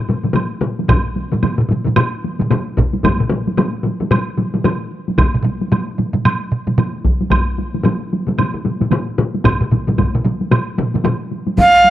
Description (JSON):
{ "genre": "japanese traditional, taiko drum ensemble", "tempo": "112 BPM", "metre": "4/4", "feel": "swing 60% on 16ths", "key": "unclear", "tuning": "A4 = 442 Hz", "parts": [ { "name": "taiko ensemble", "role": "percussion", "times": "0.1-11.9 s", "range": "none", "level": "-20 LUFS", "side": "equal", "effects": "none" }, { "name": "taiko ensemble", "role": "percussion", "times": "0.1-11.2 s", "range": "none", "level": "-19 LUFS", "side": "left 3 dB", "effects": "none" }, { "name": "woodblock", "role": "percussion", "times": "0.4-11.2 s", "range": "none", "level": "-24 LUFS", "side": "right 3 dB", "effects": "none" }, { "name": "taiko ensemble", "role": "percussion", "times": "0.9-11.2 s", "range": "none", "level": "-18 LUFS", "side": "right 2 dB", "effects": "none" }, { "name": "taiko ensemble", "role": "percussion", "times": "0.9-11.7 s", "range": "none", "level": "-18 LUFS", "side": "equal", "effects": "none" }, { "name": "breathy bright shakuhachi", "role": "melody", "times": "11.6-11.9 s", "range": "F5", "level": "-6 LUFS", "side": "right 1 dB", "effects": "none" } ], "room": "small room ambience", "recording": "dry, close 1970s-style studio recording", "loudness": "-15 LUFS", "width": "side -13 dB against mid", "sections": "0.0-11.6 A section", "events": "none", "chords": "none" }